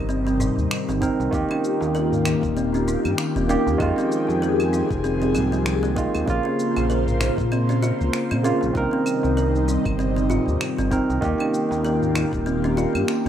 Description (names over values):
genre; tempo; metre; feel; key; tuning
organic downtempo; 97 BPM; 4/4; swing 57% on 16ths; unclear; A4 = 440 Hz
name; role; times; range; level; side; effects
barky tine electric piano; accompaniment; 0.0-13.3 s; Db3 to Bb4; -25 LUFS; right 3 dB; overdrive, sidechain pumping, ping-pong delay
airy breathy pad; sustained chords; 0.0-13.3 s; C3 to C5; -25 LUFS; left 2 dB; chorus, phaser, vintage 12-bit sampler grit, sidechain pumping
smooth gliding synth bass; bass; 0.0-13.3 s; Eb1 to Bb2; -25 LUFS; left 1 dB; none
kalimba; arpeggios; 0.1-13.3 s; Bb3 to Bb4; -27 LUFS; right 1 dB; ping-pong delay
electronic shaker, finger snaps and claves; drums; 0.1-13.3 s; none; -32 LUFS; equal; overdrive
darbuka; percussion; 0.4-12.3 s; none; -34 LUFS; right 1 dB; none
electronic kick drum; drums; 1.0-12.4 s; none; -30 LUFS; left 1 dB; overdrive
room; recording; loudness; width
light reverb; rough home demo mix; -19 LUFS; side -10 dB against mid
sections
0.0-13.3 A section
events
none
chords
0.0 Cm7; 1.3 Eb; 3.8 Fm7; 6.3 Bbm; 8.8 Cm7; 11.2 Eb